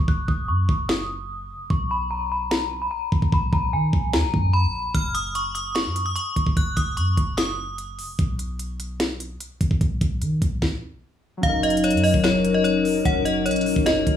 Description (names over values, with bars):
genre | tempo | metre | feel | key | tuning
hip hop, trap | 148 BPM | 4/4 | half-time | F# major | A4 = 440 Hz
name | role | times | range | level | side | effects
metallic FM bell | melody | 0.0-8.1, 11.4-14.2 s | C#5 to F#6 | -25 LUFS | equal | chorus, low-pass filter, tape echo
clean 808-style bass | bass | 0.0-14.2 s | E#1 to D#3 | -26 LUFS | equal | none
trap drum kit | drums | 0.1-14.2 s | hi-hat, kick drum, snare drum | -24 LUFS | equal | none
warbly lo-fi synth keys | accompaniment | 11.4-14.2 s | F#3 to A#4 | -23 LUFS | left 2 dB | chorus, phaser
glassy FM pad | sustained chords | 11.6-14.2 s | F#3 to A#4 | -25 LUFS | left 5 dB | ensemble chorus, built-in reverb
room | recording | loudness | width
moderate studio reverb, RT60 0.6 s | small room ambience | -20 LUFS | side -10 dB against mid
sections
0.0-11.4 A section; 11.4-14.2 B section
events
break 0.0-4.9; filter sweep on synth bell 0.0-4.9; stop 10.6-11.4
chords
0.0 F#5; 1.7 Bmaj7(no3); 4.9 F#5; 8.2 N.C.; 11.4 F#6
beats
| 0.08 0.49 0.89 1.30 | 1.70 2.11 2.51 2.92 | 3.32 3.73 4.13 4.54 | 4.95 5.35 5.76 6.16 | 6.57 6.97 7.38 7.78 | 8.19 8.59 9.00 9.40 | 9.81 10.22 10.62 11.03 | 11.43 11.84 12.24 12.65 | 13.05 13.46 13.86